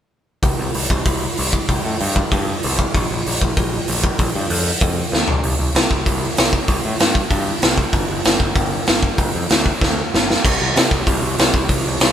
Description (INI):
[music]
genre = punk rock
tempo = 192 BPM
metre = 4/4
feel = straight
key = unclear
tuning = A4 = 440 Hz
[part]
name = overdriven picked electric bass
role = bass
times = 0.4-12.1 s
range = G1 to C3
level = -23 LUFS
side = equal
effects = none
[part]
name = raw garage drum kit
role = drums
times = 0.4-12.1 s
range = crash cymbal, hi-hat, kick drum, snare drum, toms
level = -16 LUFS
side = equal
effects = none
[sound]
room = light reverb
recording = band playing live in one room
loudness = -15 LUFS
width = side -10 dB against mid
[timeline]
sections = 0.4-10.4 A section; 10.4-12.1 B section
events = drum fill 5.1-5.4, 9.8-10.4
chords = none